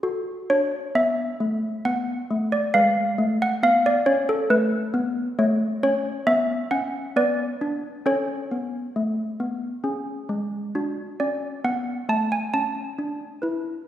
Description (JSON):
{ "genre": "classical, tune for handbells", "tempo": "67 BPM", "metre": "3/4", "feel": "straight", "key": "F# minor", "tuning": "A4 = 440 Hz", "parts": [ { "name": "malleted handbells", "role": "solo", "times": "0.0-13.9 s", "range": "G#3 to A5", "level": "-22 LUFS", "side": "equal", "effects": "none" } ], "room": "wet scoring stage reverb, RT60 1.8 s", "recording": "heard from further back in the room", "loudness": "-21 LUFS", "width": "side -11 dB against mid", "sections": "0.0-13.9 A section", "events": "none", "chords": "0.0 F#m; 2.7 C#5/G#; 5.4 A69; 7.2 Bm; 8.1 Aadd9; 9.9 C#5; 10.8 D", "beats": "| 0.04 0.95 1.85 | 2.73 3.62 4.50 | 5.38 6.27 7.16 | 8.05 8.96 9.86 | 10.76 11.66 12.55 | 13.44" }